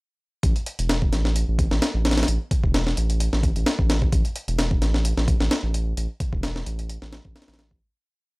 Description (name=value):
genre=breakbeat, breaks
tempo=130 BPM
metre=4/4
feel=swing 54% on 16ths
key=unclear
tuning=A4 = 442 Hz
part: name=saturated sub bass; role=bass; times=0.4-7.8 s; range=E1 to A1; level=-23 LUFS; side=equal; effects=tube saturation
part: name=breakbeat sampler-style drum kit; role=drums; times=0.4-7.8 s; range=hi-hat, kick drum, snare drum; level=-22 LUFS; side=equal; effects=studio ambience
room=little or no reverb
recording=dry, gritty hardware recording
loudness=-20 LUFS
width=side -25 dB against mid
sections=0.4-7.8 groove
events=fade-out 5.4-7.8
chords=none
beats=| 0.43 0.90 1.36 1.82 | 2.28 2.74 3.20 3.67 | 4.13 4.59 5.05 5.51 | 5.97 6.43 6.89 7.36